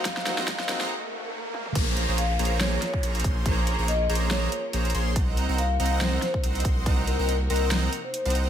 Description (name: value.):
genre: future bass.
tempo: 141 BPM.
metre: 4/4.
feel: swing 55% on 16ths, half-time.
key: Bb minor.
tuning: A4 = 440 Hz.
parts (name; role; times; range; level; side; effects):
felt-muted upright piano; accompaniment; 0.0-0.9 s; Bb3 to Gb4; -38 LUFS; left 2 dB; sidechain pumping, ping-pong delay.
warm studio string section; sustained chords; 0.0-8.5 s; C3 to Bb4; -38 LUFS; equal; sidechain pumping.
big bright polysynth; riff; 0.0-8.5 s; Bb3 to C6; -30 LUFS; right 2 dB; lush chorus, sidechain pumping.
riser, swell and downlifter; sound effects; 0.0-5.2 s; none; -35 LUFS; right 1 dB; none.
vibraphone with soft mallets; melody; 0.1-8.5 s; Bb4 to F5; -31 LUFS; left 4 dB; sidechain pumping, digital delay.
big-room dance drum kit; drums; 0.1-8.4 s; crash cymbal, hi-hat, snare drum, toms; -30 LUFS; equal; overdrive.
electronic kick drum; drums; 0.1-7.0 s; none; -26 LUFS; equal; none.
saturated sub bass; bass; 1.8-8.5 s; Bb1 to C2; -26 LUFS; equal; sidechain pumping.
room: light reverb.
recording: high-pass filter.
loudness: -23 LUFS.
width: side -9 dB against mid.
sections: 0.0-1.8 A section; 1.8-8.5 B section.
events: build-up 0.0-1.8; drum fill 0.0-0.9, 1.5; riser 0.0-1.8; filter sweep 0.0-1.8; break 0.9-1.8; swell 0.9-1.8; drop 1.8-8.5.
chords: 0.0 Cm7b5; 1.8 Bbm7; 5.2 Cm7b5.